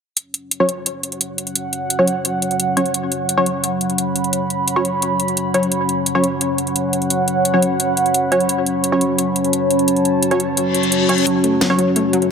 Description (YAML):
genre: dark technical drum and bass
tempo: 173 BPM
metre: 4/4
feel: straight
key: F# minor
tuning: A4 = 437 Hz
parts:
  - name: deep dark ambient pad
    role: sustained chords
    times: 1.1-12.3 s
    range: F#3 to B5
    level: -21 LUFS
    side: equal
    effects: chorus, built-in reverb
  - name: drum and bass drum kit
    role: drums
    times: 0.2-12.3 s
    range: hi-hat, snare drum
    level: -20 LUFS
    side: equal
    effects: none
  - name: warbly tape-like pad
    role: texture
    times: 1.0-12.3 s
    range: C#4 to B5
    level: -21 LUFS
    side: equal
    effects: chorus, built-in reverb, phaser
  - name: filtered dub chord stab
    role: stabs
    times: 0.6-11.8 s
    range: F#3 to C#5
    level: -20 LUFS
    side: equal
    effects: chorus, cassette tape, ping-pong delay
  - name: reverse cymbal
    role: sound effects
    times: 10.7-11.3 s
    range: none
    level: -22 LUFS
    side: left 8 dB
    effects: none
  - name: wide unison pluck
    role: arpeggios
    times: 11.3-12.2 s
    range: F#3 to A3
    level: -21 LUFS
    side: left 1 dB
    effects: ping-pong delay
room: moderate lush hall reverb, RT60 2.5 s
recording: none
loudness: -16 LUFS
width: side -6 dB against mid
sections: 0.2-12.3 A section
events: filter sweep on synth stab 0.2-12.3; reverse cymbal 10.7-11.3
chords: 0.2 F#5